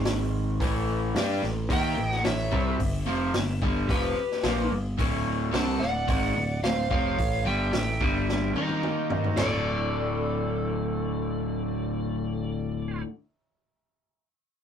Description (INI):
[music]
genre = blues rock power trio and southern rock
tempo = 110 BPM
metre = 4/4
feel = straight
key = unclear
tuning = A4 = 440 Hz
[part]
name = overdriven electric guitar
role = riff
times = 0.0-13.1 s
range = D2 to G4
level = -29 LUFS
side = left 1 dB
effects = none
[part]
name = picked electric bass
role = bass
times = 0.0-13.0 s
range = D1 to G2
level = -30 LUFS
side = equal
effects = none
[part]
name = vintage drum kit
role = drums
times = 0.1-9.5 s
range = crash cymbal, hi-hat, kick drum, snare drum, toms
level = -30 LUFS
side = equal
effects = none
[part]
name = overdriven slide guitar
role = melody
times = 1.7-13.0 s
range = B4 to A5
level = -32 LUFS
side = equal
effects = none
[part]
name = bluesy overdriven lead guitar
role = second line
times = 1.7-13.0 s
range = G4 to F#5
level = -36 LUFS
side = right 2 dB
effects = distortion
[sound]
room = moderate booth ambience, RT60 0.3 s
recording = rough rehearsal-room recording, tube saturation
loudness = -24 LUFS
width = side -8 dB against mid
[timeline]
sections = 0.0-9.4 A section; 9.4-13.7 B section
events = drum fill 8.3-9.4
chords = 0.0 G#5; 0.6 A7; 2.8 G7; 5.0 D7; 7.2 A5; 8.0 G5; 8.6 Eb5; 9.4 D5